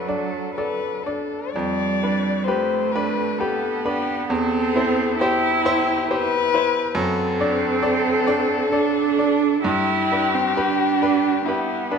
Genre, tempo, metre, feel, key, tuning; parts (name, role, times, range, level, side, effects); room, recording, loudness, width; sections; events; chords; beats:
classical, slow romantic movement for piano trio; 67 BPM; 3/4; uneven beats, rubato; G major; A4 = 435 Hz
muted violin; melody; 0.0-12.0 s; D4 to D5; -23 LUFS; left 6 dB
muted cello; second line; 0.0-12.0 s; F#3 to E4; -23 LUFS; right 7 dB
bright baby grand piano; accompaniment; 0.0-12.0 s; E2 to D5; -24 LUFS; equal
wet scoring stage reverb, RT60 2.0 s; -18 LUFS; side -6 dB against mid
0.0-12.0 A section
0.0 D/F#; 1.5 G7/F; 4.3 C/E; 7.0 D7/F#; 9.6 G
0.57 | 1.53 2.48 3.39 | 4.30 5.20 6.08 | 6.96 7.83 8.73 | 9.64 10.57 11.47